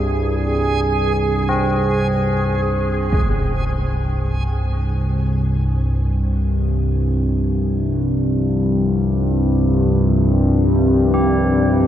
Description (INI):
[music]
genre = dark ambient drone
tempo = free time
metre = none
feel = none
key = unclear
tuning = A4 = 439 Hz
[part]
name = analog drone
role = drone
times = 0.0-11.9 s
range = C2 to G2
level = -17 LUFS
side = equal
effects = chorus
[part]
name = backwards swelling texture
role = texture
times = 0.0-3.2, 11.7-11.9 s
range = Ab4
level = -24 LUFS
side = right 3 dB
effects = built-in reverb, shimmer reverb
[part]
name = tubular bells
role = arpeggios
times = 1.5-11.9 s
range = C4 to G4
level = -26 LUFS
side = equal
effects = tape echo, shimmer reverb
[part]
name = deep dark ambient pad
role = sustained chords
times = 6.7-11.9 s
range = C4 to G4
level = -22 LUFS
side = left 2 dB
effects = chorus, built-in reverb
[part]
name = impact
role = percussion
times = 3.1-3.3 s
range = none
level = -24 LUFS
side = equal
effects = low-pass filter on sfx
[sound]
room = moderate huge ambient reverb, RT60 8.2 s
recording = dreamy mix soaked in reverb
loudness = -16 LUFS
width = side -10 dB against mid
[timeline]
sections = 0.0-3.1 A section; 3.1-11.9 B section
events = fade-in on tubular bells 3.1-11.9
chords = 0.0 Abmaj7/C; 3.1 Cm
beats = free time